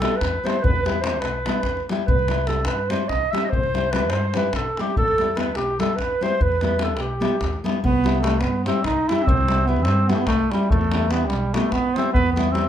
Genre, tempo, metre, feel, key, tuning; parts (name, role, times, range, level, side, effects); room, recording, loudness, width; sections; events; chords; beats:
balkan folk, Balkan wedding band; 292 BPM (eighths); 7/8; straight; A4 = 444 Hz
dark clarinet; melody; 0.0-12.7 s; G3 to E5; -23 LUFS; right 1 dB; plate reverb
dark trumpet; second line; 0.0-12.7 s; G4 to E5; -29 LUFS; right 5 dB
nylon-string guitar; accompaniment; 0.0-12.7 s; G3 to G4; -25 LUFS; left 3 dB
upright bass; bass; 0.0-12.7 s; B1 to G2; -25 LUFS; equal
davul; percussion; 0.0-12.7 s; -26 LUFS; left 1 dB
moderate studio reverb, RT60 0.6 s; close, detailed microphones; -19 LUFS; side -10 dB against mid
0.0-7.8 A section; 7.8-12.7 A section
0.0 Em; 2.1 C; 5.0 Em; 7.8 C; 10.7 Em
0.02 0.23 0.43 | 0.64 0.84 1.05 1.26 1.46 1.67 1.87 | 2.08 2.29 2.49 2.70 2.90 3.11 3.32 | 3.52 3.73 3.94 4.14 4.35 4.55 4.76 | 4.96 5.17 5.38 5.58 5.79 5.99 6.20 | 6.41 6.61 6.82 7.02 7.23 7.43 7.64 | 7.85 8.05 8.26 8.46 8.67 8.87 9.08 | 9.29 9.49 9.70 9.90 10.11 10.31 10.52 | 10.72 10.93 11.13 11.34 11.54 11.75 11.95 | 12.16 12.36 12.57